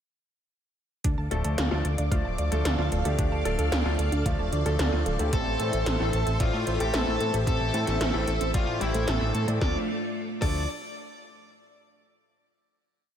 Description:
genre	synthwave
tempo	112 BPM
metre	4/4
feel	straight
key	D minor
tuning	A4 = 440 Hz
part	string machine, full ensemble	sustained chords	1.0-9.9 s	A3 to D6	-33 LUFS	equal	phaser, ensemble chorus, sidechain pumping
part	wide unison pluck	arpeggios	1.0-10.7 s	C4 to A5	-35 LUFS	right 3 dB	cassette tape, digital delay
part	fat analog bass	bass	1.0-10.7 s	D1 to A2	-28 LUFS	equal	none
part	80s electronic pad drums	drums	1.0-10.5 s	crash cymbal, hi-hat, snare drum	-32 LUFS	right 1 dB	gated reverb
part	electronic kick drum	drums	1.0-10.5 s	none	-28 LUFS	equal	overdrive
part	clear grand piano	stabs	1.3-10.6 s	A2 to D5	-34 LUFS	left 4 dB	digital delay
part	smooth overdriven lead guitar	melody	5.3-10.7 s	E4 to D5	-32 LUFS	equal	digital delay
room	light reverb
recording	none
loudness	-24 LUFS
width	side -9 dB against mid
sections	1.0-9.6 verse; 9.6-11.8 final chord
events	none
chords	1.0 Dm; 5.3 Am; 9.6 Dm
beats	| 1.04 1.58 2.12 2.65 | 3.19 3.72 4.26 4.79 | 5.33 5.87 6.40 6.94 | 7.47 8.01 8.54 9.08 | 9.62 10.15

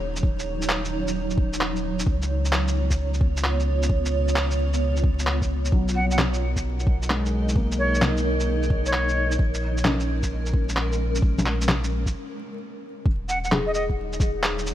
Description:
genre	future garage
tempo	131 BPM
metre	4/4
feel	swing 67% on 16ths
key	Eb minor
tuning	A4 = 441 Hz
part	granular cloud pad	sustained chords	0.0-14.7 s	Gb3 to D#5	-30 LUFS	right 2 dB	built-in reverb, vintage 12-bit sampler grit, sidechain pumping
part	warm sub bass	bass	0.0-14.7 s	Eb1 to Db2	-26 LUFS	equal	sidechain pumping
part	electronic kick drum	drums	0.2-14.3 s	none	-22 LUFS	equal	overdrive
part	electronic shaker, handclaps and bongos	drums	0.2-14.7 s	none	-26 LUFS	equal	none
part	felt-muted upright piano	accompaniment	5.7-14.7 s	F#3 to Ab4	-31 LUFS	left 2 dB	sidechain pumping, ping-pong delay
part	bright reedy jazz flute	melody	6.0-9.3, 13.3-13.8 s	Db5 to F#5	-29 LUFS	equal	vintage 12-bit sampler grit, tape echo
room	light reverb, digital ambience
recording	vinyl crackle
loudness	-21 LUFS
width	side -12 dB against mid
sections	0.0-13.1 A section; 13.1-14.7 B section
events	break 12.1-13.1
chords	0.0 Ebm7; 2.1 Db7; 5.7 Bmaj7; 9.4 Bbm7; 13.1 Ebm7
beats	| 0.23 0.69 1.15 1.61 | 2.07 2.52 2.98 3.44 | 3.90 4.36 4.81 5.27 | 5.73 6.19 6.65 7.10 | 7.56 8.02 8.48 8.94 | 9.39 9.85 10.31 10.77 | 11.23 11.68 12.14 12.60 | 13.06 13.52 13.97 14.43

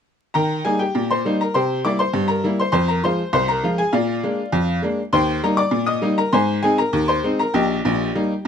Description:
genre	ragtime piano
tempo	100 BPM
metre	2/4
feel	straight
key	Eb major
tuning	A4 = 438 Hz
part	tack piano	solo	0.3-8.5 s	Bb1 to Eb6	-17 LUFS	left 1 dB	none
room	light reverb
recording	close, detailed microphones, vinyl crackle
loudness	-17 LUFS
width	side -7 dB against mid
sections	0.4-8.5 A section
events	none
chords	0.4 Eb; 1.6 C7; 2.8 Fm; 3.9 Bb7; 5.1 Eb; 6.3 Ab; 7.5 Eb/Bb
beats	| 0.36 0.96 | 1.56 2.15 | 2.75 3.35 | 3.95 4.54 | 5.14 5.74 | 6.33 6.93 | 7.54 8.14

